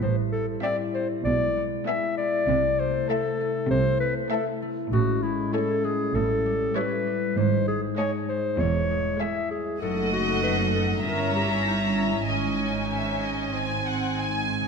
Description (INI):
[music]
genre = cinematic, playful, whimsical film cue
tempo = 98 BPM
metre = 4/4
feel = straight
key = unclear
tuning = A4 = 442 Hz
[part]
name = mellow clarinet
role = second line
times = 0.0-14.1 s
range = Db4 to E5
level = -28 LUFS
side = left 2 dB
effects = none
[part]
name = dark French horn section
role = sustained chords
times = 0.0-14.5 s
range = G3 to E4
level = -33 LUFS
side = left 2 dB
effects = none
[part]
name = concert harp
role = arpeggios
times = 0.0-14.7 s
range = E2 to G#4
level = -32 LUFS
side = left 7 dB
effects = none
[part]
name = rich studio double bass section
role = bass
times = 0.0-14.6 s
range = E1 to C2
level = -31 LUFS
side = right 6 dB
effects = none
[part]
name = warm studio cello section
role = bass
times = 0.0-14.5 s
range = E2 to C3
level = -30 LUFS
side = right 4 dB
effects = none
[part]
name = dark studio violin section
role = melody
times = 0.6-14.6 s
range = E5 to Bb5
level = -34 LUFS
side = left 4 dB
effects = none
[part]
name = rich studio violin section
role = second line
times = 0.6-14.7 s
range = C#5 to G#5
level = -31 LUFS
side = left 1 dB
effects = none
[part]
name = rich studio viola section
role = accompaniment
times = 0.6-14.6 s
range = G3 to Db4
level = -33 LUFS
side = right 3 dB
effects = none
[sound]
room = wet scoring stage reverb, RT60 1.8 s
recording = none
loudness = -23 LUFS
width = side -5 dB against mid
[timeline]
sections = 0.0-14.7 A section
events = none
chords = 0.0 Am7; 1.2 E/B; 2.5 Am/C; 4.9 Amaj7; 6.1 A7; 7.4 G#5; 8.6 C#m/E; 9.8 D#dim/F#; 11.0 Gdim7; 12.3 G#sus4; 13.5 G#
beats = | 0.02 0.63 1.25 1.87 | 2.48 3.09 3.70 4.31 | 4.92 5.53 6.14 6.75 | 7.37 7.98 8.59 9.20 | 9.81 10.43 11.04 11.65 | 12.28 12.91 13.54 14.16